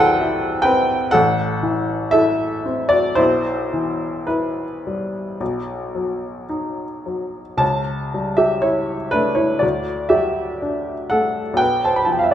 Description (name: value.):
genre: classical, romantic nocturne for solo piano.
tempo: 53-67 BPM.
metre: 4/4.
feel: rubato.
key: unclear.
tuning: A4 = 436 Hz.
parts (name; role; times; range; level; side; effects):
warm baby grand piano; solo; 0.0-12.3 s; A1 to B5; -17 LUFS; equal; none.
room: wet recital hall reverb, RT60 1.4 s.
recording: minimal, uncompressed stereo recording.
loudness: -17 LUFS.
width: side -10 dB against mid.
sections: 0.0-12.3 A section.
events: none.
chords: 0.0 Am/C; 1.1 Am; 3.2 Em/B; 5.4 B; 7.6 A7/C#; 9.6 D; 11.6 G7/B.